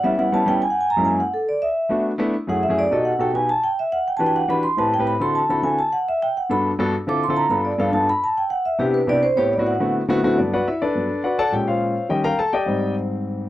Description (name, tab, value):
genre	jazz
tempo	209 BPM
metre	4/4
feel	straight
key	G major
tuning	A4 = 438 Hz
part	vibraphone with medium mallets	melody	0.0-9.9 s	G4 to D6	-20 LUFS	right 1 dB	none
part	warm concert grand piano	accompaniment	0.0-13.5 s	F#2 to Bb5	-20 LUFS	left 1 dB	none
room	little or no reverb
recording	dry, close 1970s-style studio recording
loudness	-18 LUFS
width	side -14 dB against mid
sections	0.0-1.2 A section; 1.2-10.4 A section; 10.4-13.5 A section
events	vibraphone solo 0.0-10.4; grand piano solo 10.4-13.5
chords	0.0 C#m7b5; 0.6 F#7; 1.2 Bm7; 2.3 F#m9; 2.9 B7b13; 3.5 Em7; 4.6 Am7; 5.2 D9; 5.8 Gmaj9; 6.9 Dm7; 7.5 G9; 8.1 Cmaj7; 9.2 Am7; 9.8 D13; 10.4 Gmaj9; 11.5 Bbm9; 12.1 Eb9; 12.7 Abmaj7#11